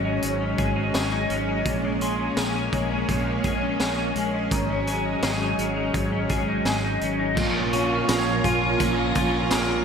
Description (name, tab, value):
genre	dream pop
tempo	84 BPM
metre	4/4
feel	straight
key	Bb minor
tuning	A4 = 443 Hz
part	string machine, violins	sustained chords	0.0-9.8 s	Gb3 to Bb5	-27 LUFS	equal	ensemble chorus
part	clean electric guitar	arpeggios	0.0-9.8 s	Ab2 to Ab4	-26 LUFS	left 2 dB	analog chorus, ping-pong delay
part	fingered electric bass	bass	0.0-9.8 s	Ab1 to Bb1	-30 LUFS	equal	none
part	raw garage drum kit	drums	0.2-9.7 s	crash cymbal, hi-hat, kick drum, snare drum, tambourine	-28 LUFS	equal	none
part	glockenspiel with hard plastic mallets	texture	2.0-9.8 s	Ab5 to Ab6	-35 LUFS	right 2 dB	ping-pong delay
part	overdriven semi-hollow guitar	accompaniment	7.3-9.8 s	Bb2 to Db4	-27 LUFS	right 4 dB	harmonic tremolo, ensemble chorus
room	wet lush hall reverb, RT60 1.5 s, studio ambience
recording	bright 1980s-style digital production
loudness	-21 LUFS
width	side -6 dB against mid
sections	0.0-7.4 A section; 7.4-9.8 B section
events	none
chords	0.0 Ab7sus4; 1.7 Bbm7; 4.5 Ab7sus4; 7.4 Bbm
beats	0.23 0.94 | 1.66 2.37 3.08 3.80 | 4.51 5.23 5.94 6.66 | 7.37 8.08 8.80 9.51